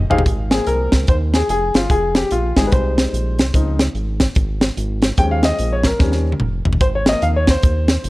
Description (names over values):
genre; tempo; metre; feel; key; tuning
uptempo gospel; 147 BPM; 4/4; swing 63% on 8ths; Ab major; A4 = 440 Hz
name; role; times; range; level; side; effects
round analog bass; bass; 0.0-8.1 s; F1 to Eb2; -20 LUFS; equal; none
clear grand piano; accompaniment; 0.1-8.1 s; F3 to G5; -20 LUFS; left 2 dB; none
tight funk drum kit; drums; 0.1-8.1 s; hi-hat, kick drum, snare drum, toms; -16 LUFS; equal; none
room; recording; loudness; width
light reverb; worn, warbling old tape, cassette tape, warbly pitch drift; -14 LUFS; side -19 dB against mid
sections
0.3-8.1 A section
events
drum fill 0.0, 6.0-6.8; grand piano solo 0.3-8.1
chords
0.3 Ab6; 1.9 Fm7; 3.5 Dbmaj7; 5.2 Eb7sus4; 6.0 Eb7; 6.8 Ab6